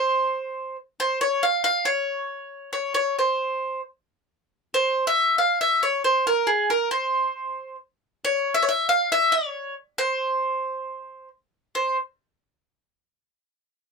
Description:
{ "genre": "klezmer", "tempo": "136 BPM", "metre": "4/4", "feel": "straight", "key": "C phrygian dominant", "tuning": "A4 = 441 Hz", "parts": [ { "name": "bowl-back mandolin", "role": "solo", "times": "0.0-12.0 s", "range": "Ab4 to F5", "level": "-21 LUFS", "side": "equal", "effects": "none" } ], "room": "light reverb", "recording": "close, detailed microphones", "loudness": "-21 LUFS", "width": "side -4 dB against mid", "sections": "0.0-11.8 A section; 11.8-13.5 B section", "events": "none", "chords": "none" }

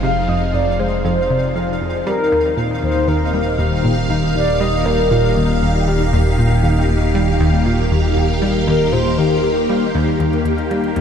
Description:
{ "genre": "ambient, sequencer-driven space music", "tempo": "118 BPM", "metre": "4/4", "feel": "straight", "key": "unclear", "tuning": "A4 = 440 Hz", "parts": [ { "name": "mellow horn-like synth lead", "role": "melody", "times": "0.0-9.9 s", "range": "Bb4 to F5", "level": "-21 LUFS", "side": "left 1 dB", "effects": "lush chorus, ping-pong delay" }, { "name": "phased string machine", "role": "sustained chords", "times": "0.0-11.0 s", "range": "Eb3 to F5", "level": "-20 LUFS", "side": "left 1 dB", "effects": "ensemble chorus, phaser" }, { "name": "analog pluck", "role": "riff", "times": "0.0-11.0 s", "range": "Eb2 to Ab3", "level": "-20 LUFS", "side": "equal", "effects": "chorus, ping-pong delay" }, { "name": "fat analog bass", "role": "bass", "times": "0.0-11.0 s", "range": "Eb1 to F1", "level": "-21 LUFS", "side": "equal", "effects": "none" }, { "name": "pulsing gated texture", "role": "texture", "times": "0.0-11.0 s", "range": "Bb3 to F5", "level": "-27 LUFS", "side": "equal", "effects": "chorus, built-in reverb" }, { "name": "electronic hi-hat and percussion blips", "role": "percussion", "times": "10.2-11.0 s", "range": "none", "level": "-45 LUFS", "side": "left 2 dB", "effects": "ping-pong delay" } ], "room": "moderate huge ambient reverb, RT60 7.3 s", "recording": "in a vast, echoing space", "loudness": "-14 LUFS", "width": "side -8 dB against mid", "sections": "0.0-10.2 A section", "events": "none", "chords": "0.0 Fm; 2.1 Ebadd9; 10.2 Eb" }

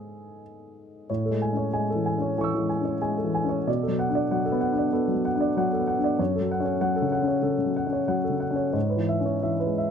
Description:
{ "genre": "neoclassical minimalist piano", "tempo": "94 BPM", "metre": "4/4", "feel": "uneven beats, rubato", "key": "A major", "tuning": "A4 = 443 Hz", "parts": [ { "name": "dark upright piano", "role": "solo", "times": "0.0-9.9 s", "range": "F#2 to E6", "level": "-23 LUFS", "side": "equal", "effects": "none" } ], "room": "light reverb", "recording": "close, detailed microphones", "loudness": "-23 LUFS", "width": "side -7 dB against mid", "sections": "0.0-1.1 A section; 1.1-9.9 B section", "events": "none", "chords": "0.0 N.C.; 1.1 Amaj7; 3.7 Bm7; 6.2 F#m; 8.8 E6/G#" }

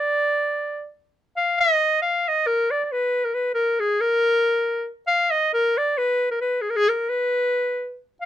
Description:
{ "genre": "balkan folk", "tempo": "free time", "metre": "none", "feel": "none", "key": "unclear", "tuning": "A4 = 439 Hz", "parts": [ { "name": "bright clarinet", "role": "solo", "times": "0.0-8.3 s", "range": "Ab4 to F5", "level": "-19 LUFS", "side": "left 1 dB", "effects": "none" } ], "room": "little or no reverb", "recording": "close, detailed microphones", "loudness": "-20 LUFS", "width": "side -11 dB against mid", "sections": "0.0-2.0 A section; 2.0-8.3 B section", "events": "clarinet solo 0.0-2.0", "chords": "none" }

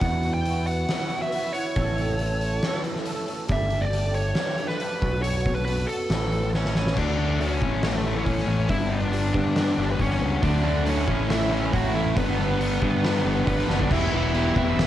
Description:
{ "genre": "quiet-loud alternative rock", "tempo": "138 BPM", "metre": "4/4", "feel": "straight", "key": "unclear", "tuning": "A4 = 441 Hz", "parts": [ { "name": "high-gain lead guitar", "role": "melody", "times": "0.0-14.9 s", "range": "A3 to G5", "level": "-29 LUFS", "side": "right 1 dB", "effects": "distortion, cassette tape" }, { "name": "electric guitar through a small old amp", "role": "arpeggios", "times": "0.0-13.9 s", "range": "E2 to A4", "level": "-33 LUFS", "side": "right 2 dB", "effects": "ensemble chorus" }, { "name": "growling fingered electric bass", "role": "bass", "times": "0.0-14.9 s", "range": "E1 to G2", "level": "-26 LUFS", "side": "equal", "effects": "overdrive" }, { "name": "oversized low-tuned drum kit", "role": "drums", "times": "0.0-14.9 s", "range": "crash cymbal, hi-hat, kick drum, snare drum, toms", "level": "-28 LUFS", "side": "equal", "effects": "none" }, { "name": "thick fuzz guitar", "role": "riff", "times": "7.0-14.9 s", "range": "G2 to G4", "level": "-27 LUFS", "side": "left 6 dB", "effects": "distortion" }, { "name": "fuzz guitar", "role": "riff", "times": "10.4-14.9 s", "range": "G2 to B4", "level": "-29 LUFS", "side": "right 11 dB", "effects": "distortion" }, { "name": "rich chamber string section", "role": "sustained chords", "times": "13.9-14.9 s", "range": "B4 to E6", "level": "-38 LUFS", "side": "right 1 dB", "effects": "none" } ], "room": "light reverb", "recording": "home recording on cassette", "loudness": "-22 LUFS", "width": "side -12 dB against mid", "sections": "0.0-7.0 A section; 7.0-13.9 B section", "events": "drum fill 6.5-7.0, 13.7", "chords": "0.0 Esus2; 1.8 A; 3.5 Gsus2; 5.0 Bm; 6.1 A; 7.0 D; 7.6 A; 8.7 G; 10.4 D; 11.1 A; 12.2 G; 13.9 Em" }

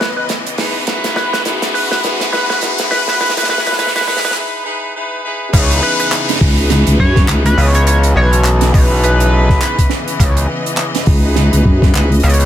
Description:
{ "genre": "glitch hop", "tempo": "103 BPM", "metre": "4/4", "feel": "swing 58% on 16ths", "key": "C# minor", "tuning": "A4 = 441 Hz", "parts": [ { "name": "sync lead", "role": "melody", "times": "0.0-9.9 s", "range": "B4 to C#5", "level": "-19 LUFS", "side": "equal", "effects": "chorus, ping-pong delay" }, { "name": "rich studio string section", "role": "sustained chords", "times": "0.0-12.5 s", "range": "C#3 to D#5", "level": "-23 LUFS", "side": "left 2 dB", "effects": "sidechain pumping" }, { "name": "modern studio drum kit", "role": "drums", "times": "0.0-12.5 s", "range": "handclaps, hi-hat, snare drum", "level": "-20 LUFS", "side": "right 3 dB", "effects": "none" }, { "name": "riser and downlifter", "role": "sound effects", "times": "0.0-10.2 s", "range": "none", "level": "-22 LUFS", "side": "left 1 dB", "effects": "none" }, { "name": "clear horn section", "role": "stabs", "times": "0.6-12.1 s", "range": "D#4 to B4", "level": "-21 LUFS", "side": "equal", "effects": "vintage 12-bit sampler grit, sidechain pumping, ping-pong delay" }, { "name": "gritty driven synth bass", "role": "bass", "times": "5.5-12.5 s", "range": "B1 to C#2", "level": "-11 LUFS", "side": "equal", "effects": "tube saturation" }, { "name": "electronic kick drum", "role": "drums", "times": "5.5-11.9 s", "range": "none", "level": "-12 LUFS", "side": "equal", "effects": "none" }, { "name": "vowel-sweep wobble bass", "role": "bass", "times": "6.4-7.6, 11.1-12.2 s", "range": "C#2 to F#2", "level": "-12 LUFS", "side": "equal", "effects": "chorus" } ], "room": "light reverb", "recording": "high-pass filter", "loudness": "-11 LUFS", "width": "side -11 dB against mid", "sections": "0.0-5.5 A section; 5.5-12.5 B section", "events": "build-up 0.0-5.5; drum fill 0.0-4.4; riser 0.0-4.4; filter sweep on analog synth lead 0.0-5.5; break 4.4-5.5; drop 5.5-12.5", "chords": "0.0 C#m9" }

